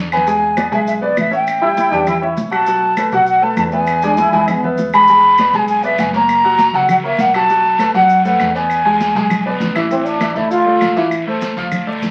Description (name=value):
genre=latin, salsa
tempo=199 BPM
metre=4/4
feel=straight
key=unclear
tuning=A4 = 444 Hz
part: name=bright baby grand piano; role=accompaniment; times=0.0-12.1 s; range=E3 to B5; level=-22 LUFS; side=equal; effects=none
part: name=upright bass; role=bass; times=0.0-12.1 s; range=F#1 to B2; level=-28 LUFS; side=equal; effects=none
part: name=breathy mellow silver concert flute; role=melody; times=0.1-9.6 s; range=D5 to B5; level=-15 LUFS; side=equal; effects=none
part: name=claves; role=percussion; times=0.1-11.9 s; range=none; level=-28 LUFS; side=equal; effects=none
part: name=guiro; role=percussion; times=0.1-0.3, 5.1-12.1 s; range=none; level=-32 LUFS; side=equal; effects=none
part: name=maracas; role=percussion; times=0.1-12.1 s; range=none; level=-43 LUFS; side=equal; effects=none
part: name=congas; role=percussion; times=0.2-12.1 s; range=none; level=-26 LUFS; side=equal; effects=none
part: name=dark trombone section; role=second line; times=1.6-4.9, 9.9-11.1 s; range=B3 to F4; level=-19 LUFS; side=equal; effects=none
room=wet studio reverb, RT60 0.6 s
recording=very old 78 rpm record, vinyl crackle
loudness=-14 LUFS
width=mono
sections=0.3-9.9 A section; 9.9-12.1 B section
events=drum fill 0.0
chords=0.3 E7; 1.5 A7; 2.7 B5; 3.9 E; 5.1 E7; 6.3 F#; 7.5 B5; 8.7 E7; 9.9 A5; 11.1 Am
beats=| 0.27 0.57 0.87 1.17 | 1.47 1.77 2.07 2.37 | 2.67 2.97 3.27 3.58 | 3.88 4.18 4.48 4.78 | 5.08 5.38 5.68 5.98 | 6.29 6.59 6.89 7.19 | 7.49 7.79 8.09 8.39 | 8.70 9.00 9.30 9.60 | 9.90 10.21 10.51 10.81 | 11.11 11.42 11.72 12.02